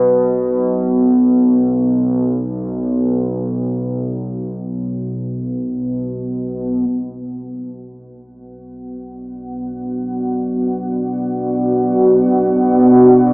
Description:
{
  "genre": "dark ambient drone",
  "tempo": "free time",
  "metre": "none",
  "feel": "none",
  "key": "unclear",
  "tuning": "A4 = 445 Hz",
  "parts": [
    { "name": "analog drone", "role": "drone", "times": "0.0-13.3 s", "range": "B1 to B2", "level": "-17 LUFS", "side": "equal", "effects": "chorus" },
    { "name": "deep dark ambient pad", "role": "sustained chords", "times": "8.9-13.3 s", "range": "B3 to F#5", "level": "-13 LUFS", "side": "equal", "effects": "chorus, built-in reverb" }
  ],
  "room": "wet cathedral reverb, RT60 6.5 s",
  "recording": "worn, warbling old tape, cassette tape, warbly pitch drift, AM radio sound",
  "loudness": "-14 LUFS",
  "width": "side -29 dB against mid",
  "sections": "0.0-6.9 A section; 6.9-13.3 B section",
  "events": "filter sweep on synth drone 6.9-13.3",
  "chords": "0.0 N.C.; 6.9 Bm"
}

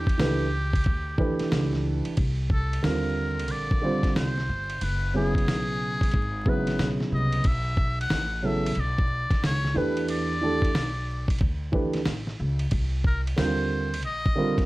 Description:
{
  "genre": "hip hop, jazz-hop",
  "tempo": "91 BPM",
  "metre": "4/4",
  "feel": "swing 64% on 16ths",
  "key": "unclear",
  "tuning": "A4 = 440 Hz",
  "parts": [
    { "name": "trumpet with metal mute", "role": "melody", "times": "0.0-14.7 s", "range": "G4 to F#5", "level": "-31 LUFS", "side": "left 1 dB", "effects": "none" },
    { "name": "dark baby grand piano", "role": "accompaniment", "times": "0.0-14.7 s", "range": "C#3 to C5", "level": "-27 LUFS", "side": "right 2 dB", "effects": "none" },
    { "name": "upright bass", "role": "bass", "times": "0.0-14.6 s", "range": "F#1 to E2", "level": "-29 LUFS", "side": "equal", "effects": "none" },
    { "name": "dusty soul sampler-style drum kit", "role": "drums", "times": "0.1-14.7 s", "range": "hi-hat, kick drum, ride cymbal, snare drum", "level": "-27 LUFS", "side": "equal", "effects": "none" }
  ],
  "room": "light reverb",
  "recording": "dark, warm production, vinyl crackle",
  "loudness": "-23 LUFS",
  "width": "side -19 dB against mid",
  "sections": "0.0-14.7 A section",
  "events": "none",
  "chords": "0.0 Em7; 2.2 Cm11; 4.8 F#9sus4; 7.4 Bm11; 9.8 Em7; 12.7 Cm11"
}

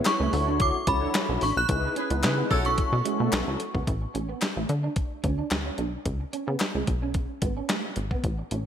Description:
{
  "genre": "early-eighties boogie funk",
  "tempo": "110 BPM",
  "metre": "4/4",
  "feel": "straight",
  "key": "unclear",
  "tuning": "A4 = 440 Hz",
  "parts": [
    { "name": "mellow synth brass", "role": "accompaniment", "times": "0.0-3.6 s", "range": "C#4 to C#5", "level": "-31 LUFS", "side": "left 3 dB", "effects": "chorus" },
    { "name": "electric guitar at the edge of break-up", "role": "riff", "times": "0.0-8.6 s", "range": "G#3 to D4", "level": "-33 LUFS", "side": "right 5 dB", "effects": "ensemble chorus" },
    { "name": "group handclap", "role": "percussion", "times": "0.0-7.8 s", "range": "none", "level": "-39 LUFS", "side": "left 5 dB", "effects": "none" },
    { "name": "synth chime", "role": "melody", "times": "0.1-3.6 s", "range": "B5 to F#6", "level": "-28 LUFS", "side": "equal", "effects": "ensemble chorus, digital delay" },
    { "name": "detuned 8-bit digital drum machine", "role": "drums", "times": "0.1-8.6 s", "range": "handclaps, hi-hat, kick drum, snare drum", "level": "-28 LUFS", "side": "equal", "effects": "gated reverb" },
    { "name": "plucky analog bass", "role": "bass", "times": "0.2-8.7 s", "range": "G#1 to D3", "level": "-28 LUFS", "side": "equal", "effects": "none" },
    { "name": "mellow horn section", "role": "second line", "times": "2.0-2.7 s", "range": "E4 to C#5", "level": "-34 LUFS", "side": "equal", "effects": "digital delay" }
  ],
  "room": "light reverb",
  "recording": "bright 1980s-style digital production",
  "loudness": "-24 LUFS",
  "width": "side -9 dB against mid",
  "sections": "0.0-3.9 A section; 3.9-8.7 B section",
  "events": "band accent 1.7-3.9",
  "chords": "0.3 Dmaj7; 1.7 C#m7; 2.5 B9sus4; 3.9 Aadd9; 4.7 Bmadd9; 6.1 C#5; 6.9 Bsus2"
}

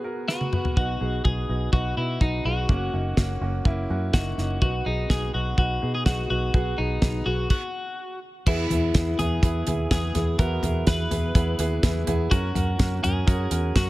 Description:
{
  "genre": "piano-driven pop",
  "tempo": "125 BPM",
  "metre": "4/4",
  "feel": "straight",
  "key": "unclear",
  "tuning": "A4 = 440 Hz",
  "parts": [
    { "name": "twelve-string electric guitar", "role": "melody", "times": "0.0-13.9 s", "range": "D#4 to B4", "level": "-30 LUFS", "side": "left 2 dB", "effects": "none" },
    { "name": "clear upright piano", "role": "accompaniment", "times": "0.0-13.9 s", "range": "B2 to B4", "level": "-30 LUFS", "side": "right 2 dB", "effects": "none" },
    { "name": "damped 70s drum kit", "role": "drums", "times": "0.3-13.9 s", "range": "crash cymbal, hi-hat, kick drum, snare drum, toms", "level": "-23 LUFS", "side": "equal", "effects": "none" },
    { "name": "vintage muted fingered electric bass", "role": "bass", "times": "0.8-13.9 s", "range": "F#1 to B2", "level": "-26 LUFS", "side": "equal", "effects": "none" }
  ],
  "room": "small room ambience",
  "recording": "none",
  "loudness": "-22 LUFS",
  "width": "side -18 dB against mid",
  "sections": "0.0-8.5 A section; 8.5-13.9 B section",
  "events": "drum fill 0.3-0.8; stop 7.5-8.5",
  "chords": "0.0 G#m7/B; 0.8 B; 2.7 F#; 4.6 B; 6.5 G#m7/B; 7.5 N.C.; 8.5 E; 12.3 F#"
}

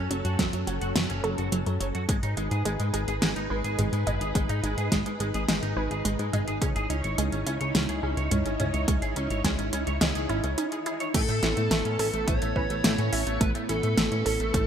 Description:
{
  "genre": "synthwave",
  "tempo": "106 BPM",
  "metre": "4/4",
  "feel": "straight",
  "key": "unclear",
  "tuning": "A4 = 440 Hz",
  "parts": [
    { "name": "string machine, full ensemble", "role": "sustained chords", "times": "0.0-14.7 s", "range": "B3 to C#5", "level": "-33 LUFS", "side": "equal", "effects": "ensemble chorus, sidechain pumping" },
    { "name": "clean electric guitar", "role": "riff", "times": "0.0-14.6 s", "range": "F#3 to C#5", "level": "-35 LUFS", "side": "right 2 dB", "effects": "ensemble chorus, ping-pong delay" },
    { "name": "chorused synth bass", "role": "bass", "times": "0.0-14.7 s", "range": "F#1 to A2", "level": "-29 LUFS", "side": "equal", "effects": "none" },
    { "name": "wide unison pluck", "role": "arpeggios", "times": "0.1-14.7 s", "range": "F#3 to E5", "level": "-33 LUFS", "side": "right 2 dB", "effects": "ping-pong delay" },
    { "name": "pop drum kit", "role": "drums", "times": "0.1-14.7 s", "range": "crash cymbal, hi-hat, snare drum, toms", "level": "-29 LUFS", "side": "equal", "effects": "overdrive" },
    { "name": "electronic kick drum", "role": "drums", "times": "0.4-14.7 s", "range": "none", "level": "-28 LUFS", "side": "equal", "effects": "overdrive" },
    { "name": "smooth overdriven lead guitar", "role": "melody", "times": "11.1-14.7 s", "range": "A4 to C#5", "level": "-30 LUFS", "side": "right 1 dB", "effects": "ping-pong delay" }
  ],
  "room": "light reverb, digital ambience",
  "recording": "bright 1980s-style digital production",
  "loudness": "-24 LUFS",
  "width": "side -8 dB against mid",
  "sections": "0.0-11.1 A section; 11.1-14.7 B section",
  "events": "filter sweep on synth arpeggio sound 0.0-11.1; break 10.6-11.1",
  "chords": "0.0 F#m; 2.1 G#m; 6.6 C#madd9; 11.1 Asus2"
}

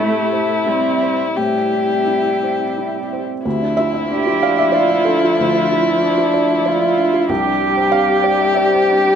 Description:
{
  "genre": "neoclassical piano and strings",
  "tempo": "85-96 BPM",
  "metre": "3/4",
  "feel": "rubato",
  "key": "D minor",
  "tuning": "A4 = 439 Hz",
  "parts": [
    { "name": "muted violin", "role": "melody", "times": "0.0-9.2 s", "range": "E4 to G4", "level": "-18 LUFS", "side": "left 5 dB", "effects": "none" },
    { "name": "muted cello", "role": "second line", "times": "0.0-9.2 s", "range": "G3 to G4", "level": "-21 LUFS", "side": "right 6 dB", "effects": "none" },
    { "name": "felt-muted upright piano", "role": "accompaniment", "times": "0.0-9.2 s", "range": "C2 to F5", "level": "-20 LUFS", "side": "right 2 dB", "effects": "none" },
    { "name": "muted viola", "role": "accompaniment", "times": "0.0-9.2 s", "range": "F3 to E4", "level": "-25 LUFS", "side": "right 4 dB", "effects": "none" },
    { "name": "dark analog pad", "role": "sustained chords", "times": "0.0-9.2 s", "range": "F3 to E5", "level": "-25 LUFS", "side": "right 1 dB", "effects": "chorus, phaser" }
  ],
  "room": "moderate studio reverb, RT60 0.5 s",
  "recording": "band playing live in one room",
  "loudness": "-14 LUFS",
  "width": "side -8 dB against mid",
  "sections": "0.0-3.5 A section; 3.5-9.2 B section",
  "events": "none",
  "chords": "0.0 Am7; 3.5 Dmadd9; 7.3 Csus2"
}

